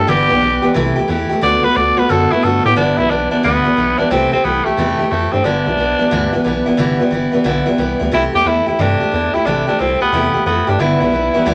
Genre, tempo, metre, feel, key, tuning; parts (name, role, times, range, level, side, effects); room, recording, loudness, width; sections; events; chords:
rockabilly; 179 BPM; 4/4; swing 65% on 8ths; G major; A4 = 440 Hz
growling tenor saxophone; melody; 0.0-11.5 s; A3 to D5; -18 LUFS; equal
picked steel-string acoustic guitar; accompaniment; 0.0-11.5 s; G2 to G4; -18 LUFS; equal
rubbery square bass; bass; 0.0-11.5 s; F1 to A2; -24 LUFS; equal
moderate club ambience, RT60 0.5 s; -15 LUFS; mono
0.0-2.8 A section; 2.8-11.5 B section
tenor saxophone solo 0.0-2.8
0.1 G6; 0.8 C6; 1.4 D6; 2.8 G6; 4.1 C6; 5.4 G6; 8.1 C6; 10.8 G6